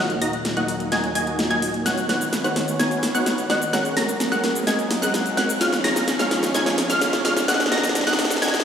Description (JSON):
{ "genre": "EDM, festival progressive house", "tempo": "128 BPM", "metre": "4/4", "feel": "straight", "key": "Eb minor", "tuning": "A4 = 440 Hz", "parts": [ { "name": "lush unison pad", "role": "sustained chords", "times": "0.0-8.6 s", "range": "Eb2 to C#4", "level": "-30 LUFS", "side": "left 1 dB", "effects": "chorus" }, { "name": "wide unison pluck", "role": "arpeggios", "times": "0.0-8.6 s", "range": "F6 to Bb6", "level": "-25 LUFS", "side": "equal", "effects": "dub echo" }, { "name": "supersaw stab", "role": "riff", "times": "0.0-8.6 s", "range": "Ab3 to Bb5", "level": "-24 LUFS", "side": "equal", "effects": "low-pass filter, dub echo" }, { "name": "riser and reverse cymbal", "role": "sound effects", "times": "0.3-8.6 s", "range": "none", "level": "-31 LUFS", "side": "right 2 dB", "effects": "none" }, { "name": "big-room dance drum kit", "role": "drums", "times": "0.1-8.6 s", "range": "hi-hat, shaker, snare drum", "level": "-24 LUFS", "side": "equal", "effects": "none" }, { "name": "bell-like FM electric piano", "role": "melody", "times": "2.4-5.1 s", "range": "Bb4 to D#5", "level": "-30 LUFS", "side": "right 1 dB", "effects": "chorus, dub echo" } ], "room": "wet lush hall reverb, RT60 2.2 s", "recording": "played on a big sound system in a bare room, stone room reverb, high-pass filter", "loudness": "-19 LUFS", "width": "side -8 dB against mid", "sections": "0.0-8.6 A section", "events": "build-up 0.0-8.6; drum fill 0.0-8.6; filter sweep on supersaw synth 0.0-8.6; filter sweep on analog synth pad 0.0-8.6; reverse cymbal 8.4", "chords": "0.0 Ebm; 1.9 Badd9; 3.7 Gbadd9; 5.6 Dbadd9; 7.5 Ebm" }